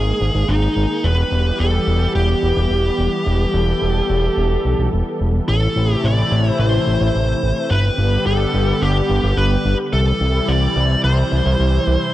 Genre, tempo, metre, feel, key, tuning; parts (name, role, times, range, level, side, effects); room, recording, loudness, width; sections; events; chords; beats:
synthwave; 108 BPM; 4/4; straight; A4 = 440 Hz
smooth overdriven lead guitar; melody; 0.0-12.1 s; Eb4 to D5; -21 LUFS; equal; digital delay
warm analog pad; sustained chords; 0.0-12.1 s; C3 to A4; -22 LUFS; equal; chorus
fat analog bass; bass; 0.0-12.0 s; E1 to C2; -17 LUFS; equal
light reverb; dark, warm production; -15 LUFS; side -14 dB against mid
0.0-5.5 A section; 5.5-12.1 B section
0.0 Absus2; 1.0 Em; 5.5 Am; 7.7 G; 9.9 C
0.48 | 1.04 1.60 2.15 2.71 | 3.26 3.82 4.37 4.93 | 5.49 6.04 6.60 7.15 | 7.71 8.26 8.82 9.37 | 9.93 10.48 11.04 11.60